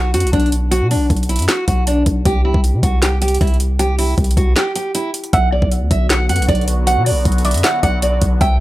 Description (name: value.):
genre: hip hop, trap.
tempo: 156 BPM.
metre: 4/4.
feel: half-time.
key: B phrygian.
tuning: A4 = 439 Hz.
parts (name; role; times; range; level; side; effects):
picked steel-string acoustic guitar; melody; 0.0-8.6 s; D4 to G5; -19 LUFS; right 1 dB; low-pass filter.
long sustained 808-style bass; bass; 0.0-8.6 s; B1 to C3; -16 LUFS; equal; none.
trap drum kit; drums; 0.1-8.5 s; handclaps, hi-hat, kick drum, snare drum; -18 LUFS; equal; overdrive.
soft round pluck; second line; 5.3-8.6 s; D5 to E5; -25 LUFS; equal; chorus, analog delay.
sweeping resonant pad; sustained chords; 5.3-8.6 s; D3 to G4; -26 LUFS; equal; chorus.
room: little or no reverb.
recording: dry, gritty hardware recording, transformer saturation.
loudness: -13 LUFS.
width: side -16 dB against mid.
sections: 0.0-5.3 A section; 5.3-8.6 B section.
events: break 4.6-5.3.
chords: 0.0 B5; 2.3 C5; 5.3 Bm.